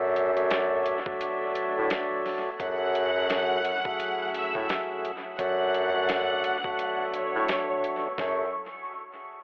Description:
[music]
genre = hip hop, boom-bap hip-hop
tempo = 86 BPM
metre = 4/4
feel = swing 60% on 16ths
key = F# minor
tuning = A4 = 440 Hz
[part]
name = tonewheel organ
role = accompaniment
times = 0.0-8.5 s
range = F#3 to E5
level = -32 LUFS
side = equal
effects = stopped rotary speaker, low-pass filter, dub echo
[part]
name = warm studio string section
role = sustained chords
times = 0.0-8.5 s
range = F#3 to A4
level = -43 LUFS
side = equal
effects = low-pass filter
[part]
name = clear bassoon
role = bass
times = 0.0-8.5 s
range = F#2 to A2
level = -29 LUFS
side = equal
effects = none
[part]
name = boom bap sampler-style drum kit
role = drums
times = 0.2-8.4 s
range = hi-hat, kick drum, snare drum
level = -38 LUFS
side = equal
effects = dub echo
[part]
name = clear studio violin section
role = melody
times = 2.6-8.5 s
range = C#5 to F#6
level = -33 LUFS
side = equal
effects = low-pass filter, dub echo
[sound]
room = light reverb, studio reverb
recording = echo-heavy mix, telephone sound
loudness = -28 LUFS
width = mono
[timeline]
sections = 0.0-2.6 A section; 2.6-8.2 B section; 8.2-9.4 C section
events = break 1.2-2.6, 6.8-8.2; filter sweep 2.6-8.2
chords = 0.0 Bm11/F#; 2.6 F#m7; 5.4 Bm11/F#; 8.2 F#m7

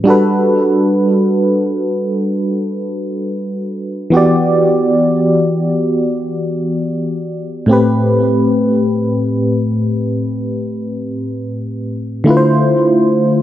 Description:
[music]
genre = R&B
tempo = free time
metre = none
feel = none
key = G major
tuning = A4 = 441 Hz
[part]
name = FM electric piano with tremolo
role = solo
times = 0.0-13.4 s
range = A2 to D5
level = -13 LUFS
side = equal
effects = digital delay
[sound]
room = moderate lush hall reverb, RT60 2.6 s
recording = none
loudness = -13 LUFS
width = side -12 dB against mid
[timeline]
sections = 0.1-13.4 A section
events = none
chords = 0.1 Gmaj7; 4.1 Em9; 7.7 Am7; 12.3 Dm7

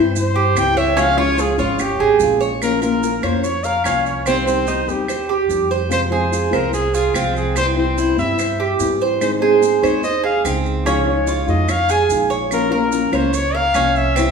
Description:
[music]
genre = latin, Cuban son and guajira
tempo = 146 BPM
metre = 4/4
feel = straight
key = unclear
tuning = A4 = 440 Hz
[part]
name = nylon-string guitar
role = accompaniment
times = 0.0-14.3 s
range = C3 to Ab4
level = -22 LUFS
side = left 5 dB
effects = none
[part]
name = Cuban tres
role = arpeggios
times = 0.0-14.3 s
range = C4 to Db5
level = -19 LUFS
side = right 6 dB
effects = none
[part]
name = upright bass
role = bass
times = 0.0-14.3 s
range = Ab1 to Ab2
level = -24 LUFS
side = right 1 dB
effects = none
[part]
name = warm trumpet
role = melody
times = 0.2-14.3 s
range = F4 to Ab5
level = -21 LUFS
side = left 2 dB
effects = none
[part]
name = maracas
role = percussion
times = 0.2-14.3 s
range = none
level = -33 LUFS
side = right 6 dB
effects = none
[part]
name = claves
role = percussion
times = 0.6-14.3 s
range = none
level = -31 LUFS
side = equal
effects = none
[sound]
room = wet recital hall reverb, RT60 1.4 s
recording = recorded in a church or concert hall, small room ambience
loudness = -15 LUFS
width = side -5 dB against mid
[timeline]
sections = 0.0-2.6 A section; 2.6-14.3 B section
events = trumpet solo 0.0-2.6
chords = 0.0 C; 1.0 Db; 2.6 Bbm; 4.3 Cm; 5.9 Fm; 7.6 C; 9.2 Ab; 10.9 Dbadd9; 12.5 Bbm

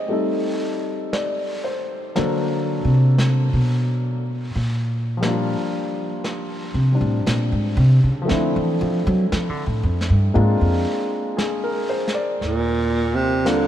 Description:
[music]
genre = jazz ballad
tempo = 58 BPM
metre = 4/4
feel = swing 68% on 8ths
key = unclear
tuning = A4 = 441 Hz
[part]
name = warm grand piano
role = accompaniment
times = 0.0-13.7 s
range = F3 to Eb5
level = -24 LUFS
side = left 2 dB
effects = none
[part]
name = vintage brush drum kit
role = drums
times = 0.1-13.7 s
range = brushed snare drum, hi-hat, snare drum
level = -31 LUFS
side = equal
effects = none
[part]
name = upright bass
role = bass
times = 2.2-13.7 s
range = Eb2 to F#3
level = -19 LUFS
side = equal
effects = none
[part]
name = breathy baritone saxophone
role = melody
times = 12.5-13.7 s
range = Bb2 to D3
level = -19 LUFS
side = right 2 dB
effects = none
[sound]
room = moderate cathedral reverb, RT60 6.7 s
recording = in a vast, echoing space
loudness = -18 LUFS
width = side -11 dB against mid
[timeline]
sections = 0.0-12.4 A section; 12.4-13.7 B section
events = upright bass solo 0.0-12.4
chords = 0.1 Am7b5; 2.2 D7b13; 4.2 Gm7; 8.3 Dm7; 10.3 Bb7; 12.4 Eb6

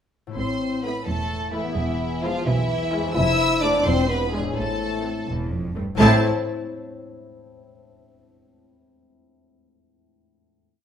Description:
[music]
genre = cinematic, playful, whimsical film cue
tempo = 86 BPM (dotted quarters)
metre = 6/8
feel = straight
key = A minor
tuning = A4 = 439 Hz
[part]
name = concert harp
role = arpeggios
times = 0.3-6.3 s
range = E2 to C5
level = -30 LUFS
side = left 5 dB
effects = none
[part]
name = rich studio violin section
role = melody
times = 0.4-6.2 s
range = E5 to E6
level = -28 LUFS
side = equal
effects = none
[part]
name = rich studio violin section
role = second line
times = 0.4-6.2 s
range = E4 to A5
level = -29 LUFS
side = equal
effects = none
[part]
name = clear French horn section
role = sustained chords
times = 0.4-6.2 s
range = E3 to E4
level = -26 LUFS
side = left 3 dB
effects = none
[part]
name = rich studio cello section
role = bass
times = 0.4-6.2 s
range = E2 to B2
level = -26 LUFS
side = right 2 dB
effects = none
[part]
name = rich studio double bass section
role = bass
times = 0.4-6.3 s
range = E1 to B1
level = -26 LUFS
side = right 2 dB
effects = none
[part]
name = rich studio viola section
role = accompaniment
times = 0.8-6.2 s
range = G#3 to E4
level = -29 LUFS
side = right 1 dB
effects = none
[sound]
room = wet stone room reverb, RT60 1.1 s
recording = none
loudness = -20 LUFS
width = side -8 dB against mid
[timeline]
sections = 0.4-6.0 A section; 6.0-7.4 final chord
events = none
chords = 0.4 Am; 1.8 E; 3.2 Dm/F; 3.9 E7b9; 4.6 Am

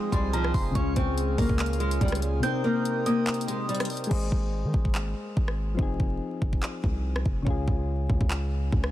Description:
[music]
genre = hip hop, trap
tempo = 143 BPM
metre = 4/4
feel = half-time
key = Ab major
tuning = A4 = 438 Hz
[part]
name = nylon-string guitar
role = melody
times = 0.0-3.9 s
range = F3 to Db4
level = -29 LUFS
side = left 1 dB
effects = digital delay
[part]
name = glassy synth bell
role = second line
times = 0.0-3.7 s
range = Bb5 to G6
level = -36 LUFS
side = right 3 dB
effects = chorus, tremolo, digital delay
[part]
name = soft electric-piano-like synth keys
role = accompaniment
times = 0.0-8.9 s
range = C3 to Eb5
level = -33 LUFS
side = left 3 dB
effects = chorus
[part]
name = pedal harmonium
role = sustained chords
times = 0.0-4.1 s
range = Db3 to F5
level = -36 LUFS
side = right 3 dB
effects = none
[part]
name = hard-hitting 808-style bass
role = bass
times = 0.1-8.9 s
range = F1 to Eb3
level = -28 LUFS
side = equal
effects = none
[part]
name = trap drum kit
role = drums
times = 0.1-8.9 s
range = crash cymbal, handclaps, hi-hat, kick drum, rim click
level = -28 LUFS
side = equal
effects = soft clipping on snare
[sound]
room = little or no reverb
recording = dense, heavily limited modern master, vinyl crackle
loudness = -24 LUFS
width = side -14 dB against mid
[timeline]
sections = 0.0-4.1 A section; 4.1-8.9 B section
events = kick muted 2.4-4.1; hi-hats muted 4.1-8.9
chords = 0.0 Fm7; 0.8 Db; 2.4 Cm7; 4.1 Ab; 5.8 Fm7; 7.5 Db

